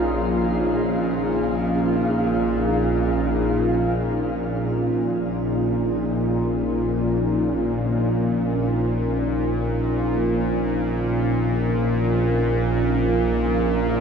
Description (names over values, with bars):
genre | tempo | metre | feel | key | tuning
dark ambient drone | free time | none | none | Bb minor | A4 = 440 Hz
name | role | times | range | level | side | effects
dark analog pad | sustained chords | 0.0-14.0 s | Db4 to Bb4 | -24 LUFS | right 1 dB | chorus, phaser, shimmer reverb
bowed-like drone | drone | 0.0-14.0 s | Bb1 to Bb2 | -22 LUFS | equal | built-in reverb
flickering grainy texture | texture | 0.0-4.2, 13.6-14.0 s | F4 to F5 | -32 LUFS | left 1 dB | built-in reverb, shimmer reverb
room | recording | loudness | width
wet huge ambient reverb, RT60 7.7 s | dark, warm production | -20 LUFS | side -6 dB against mid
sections
0.0-4.2 A section; 4.2-14.0 B section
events
none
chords
0.0 Bb5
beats
free time